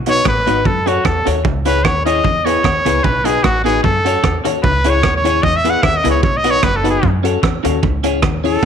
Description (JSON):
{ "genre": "ska", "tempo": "150 BPM", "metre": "4/4", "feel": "swing 54% on 8ths", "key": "F# dorian", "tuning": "A4 = 440 Hz", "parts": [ { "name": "upright bass", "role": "bass", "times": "0.0-8.7 s", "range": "F#1 to F#2", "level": "-21 LUFS", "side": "equal", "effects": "none" }, { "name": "bright trumpet", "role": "melody", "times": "0.1-8.7 s", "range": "F#4 to F#5", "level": "-16 LUFS", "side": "equal", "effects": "none" }, { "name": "clean electric guitar", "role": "accompaniment", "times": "0.1-8.6 s", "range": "B3 to C#5", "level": "-23 LUFS", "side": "right 10 dB", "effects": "wide subtle chorus" }, { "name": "dark upright piano", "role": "stabs", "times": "0.1-8.6 s", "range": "C#4 to C#5", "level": "-21 LUFS", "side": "left 12 dB", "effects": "none" }, { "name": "crunchy breakbeat drum kit", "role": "drums", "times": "0.1-8.7 s", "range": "hi-hat, kick drum, rim click, snare drum", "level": "-19 LUFS", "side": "right 3 dB", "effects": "none" }, { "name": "semi-hollow electric guitar", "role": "riff", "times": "0.3-8.4 s", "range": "F#2 to F#3", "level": "-26 LUFS", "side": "left 11 dB", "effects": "analog chorus" } ], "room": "moderate plate reverb, RT60 1.5 s, studio ambience", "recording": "1960s-style stereo with parts hard left and right", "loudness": "-12 LUFS", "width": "side -8 dB against mid", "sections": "0.0-8.7 A section", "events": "trumpet solo 0.0-8.7", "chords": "0.0 B; 0.7 F#m; 1.5 C#m; 2.2 E; 3.0 B; 3.8 F#m; 4.6 C#m; 5.4 E; 6.2 B; 7.0 F#m; 7.8 C#m" }